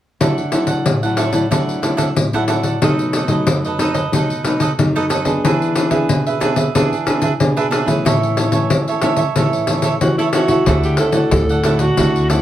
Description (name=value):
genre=samba and choro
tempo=92 BPM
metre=4/4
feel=straight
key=D major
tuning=A4 = 440 Hz
part: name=cavaquinho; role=accompaniment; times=0.2-12.4 s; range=D4 to F#5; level=-20 LUFS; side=right 5 dB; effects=none
part: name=nylon-string guitar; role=accompaniment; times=0.2-12.4 s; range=F#2 to G#4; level=-19 LUFS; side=left 1 dB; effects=none
part: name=pandeiro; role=percussion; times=0.2-12.4 s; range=none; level=-18 LUFS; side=left 2 dB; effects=none
part: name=growling alto saxophone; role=melody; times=10.0-12.4 s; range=E4 to A4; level=-19 LUFS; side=right 1 dB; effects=none
part: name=upright bass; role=bass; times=10.7-12.4 s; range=D2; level=-18 LUFS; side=equal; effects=none
room=wet small room reverb, RT60 0.5 s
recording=heard from further back in the room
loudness=-14 LUFS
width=side -12 dB against mid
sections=0.2-10.7 A section; 10.7-12.4 B section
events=none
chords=0.2 Dadd9; 2.8 B7; 5.4 E7; 8.1 A; 10.7 Dadd9